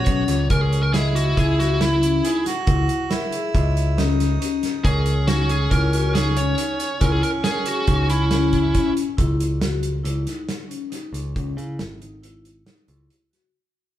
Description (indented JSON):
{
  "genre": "progressive instrumental, band music in an uneven meter",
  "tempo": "138 BPM",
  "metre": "5/4",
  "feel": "straight",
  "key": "C# dorian",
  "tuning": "A4 = 442 Hz",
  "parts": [
    { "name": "biting lead guitar", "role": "melody", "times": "0.0-8.9 s", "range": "E4 to C#5", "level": "-24 LUFS", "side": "equal", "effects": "overdrive" },
    { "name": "accordion", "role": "second line", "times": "0.0-8.9 s", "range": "C#4 to G#4", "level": "-27 LUFS", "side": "right 2 dB", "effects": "none" },
    { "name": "modern bright picked electric bass", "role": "bass", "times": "0.0-13.1 s", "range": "G#1 to C#3", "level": "-22 LUFS", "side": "equal", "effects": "none" },
    { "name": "vibraphone with medium mallets", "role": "arpeggios", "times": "0.1-13.4 s", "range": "C#4 to D#5", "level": "-27 LUFS", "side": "left 4 dB", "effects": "none" },
    { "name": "loose indie drum kit", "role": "drums", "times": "0.1-13.4 s", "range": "hi-hat, kick drum, snare drum", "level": "-25 LUFS", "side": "right 1 dB", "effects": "none" }
  ],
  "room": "wet large studio reverb, RT60 1.4 s",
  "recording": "band playing live in one room",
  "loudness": "-18 LUFS",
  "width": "side -12 dB against mid",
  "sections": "0.0-9.2 A section; 9.2-13.5 B section",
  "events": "fade-out 9.2-13.5",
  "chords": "0.0 Bsus2; 0.5 C#madd9; 4.8 D#7(no3)/C#; 7.0 C#m; 9.2 C#madd9"
}